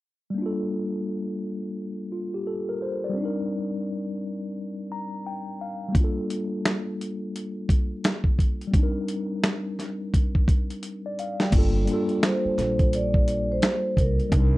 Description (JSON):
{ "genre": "lo-fi hip hop", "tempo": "86 BPM", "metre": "4/4", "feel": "swing 62% on 16ths", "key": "G minor", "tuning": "A4 = 440 Hz", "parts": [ { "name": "mellow tine electric piano", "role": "accompaniment", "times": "0.3-14.6 s", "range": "G3 to Bb5", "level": "-28 LUFS", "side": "left 1 dB", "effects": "fast stereo tremolo, plate reverb" }, { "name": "dusty soul sampler-style drum kit", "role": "drums", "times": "5.9-14.5 s", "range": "crash cymbal, finger snaps, hi-hat, kick drum, snare drum", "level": "-22 LUFS", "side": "equal", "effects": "vintage 12-bit sampler grit" }, { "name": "upright bass", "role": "bass", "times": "11.5-14.6 s", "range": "G1 to C2", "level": "-26 LUFS", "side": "equal", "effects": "none" }, { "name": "vibraphone with soft mallets", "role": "melody", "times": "12.2-14.6 s", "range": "Bb4 to D5", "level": "-27 LUFS", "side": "right 2 dB", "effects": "plate reverb" } ], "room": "light reverb", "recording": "dark, warm production", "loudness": "-24 LUFS", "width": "side -18 dB against mid", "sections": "0.4-11.5 A section; 11.5-14.6 B section", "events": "tine electric piano fill 4.6-5.9; drum fill 10.8-11.5", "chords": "0.4 Gm7; 3.2 Cm9; 5.9 Gm7; 8.7 Cm9; 11.5 Gm7" }